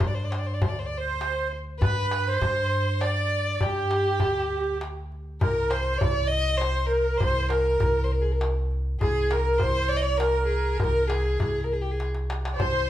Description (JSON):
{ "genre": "Arabic maqam ensemble", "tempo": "100 BPM", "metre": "3/4", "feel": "straight", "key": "C maqam saba from 5.4 s", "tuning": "A4 = 441 Hz", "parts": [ { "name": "warm violin", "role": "melody", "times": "0.0-12.9 s", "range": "G4 to Eb5", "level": "-27 LUFS", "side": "left 1 dB", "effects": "none" }, { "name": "upright bass", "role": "bass", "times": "0.0-12.9 s", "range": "C2 to G2", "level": "-28 LUFS", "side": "equal", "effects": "none" }, { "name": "darbuka", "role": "percussion", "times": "0.0-12.7 s", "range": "none", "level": "-29 LUFS", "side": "left 1 dB", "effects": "none" }, { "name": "accordion", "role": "second line", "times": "1.0-12.9 s", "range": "G4 to Eb5", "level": "-29 LUFS", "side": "right 5 dB", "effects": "none" }, { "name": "rich studio violin section", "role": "second line", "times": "12.6-12.9 s", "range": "C5", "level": "-26 LUFS", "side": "left 4 dB", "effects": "none" } ], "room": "moderate large studio reverb, RT60 1.1 s", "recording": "band playing live in one room", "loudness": "-23 LUFS", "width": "side -12 dB against mid", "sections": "0.0-5.4 A section; 5.4-12.9 B section", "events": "drum fill 12.0-12.6", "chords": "none" }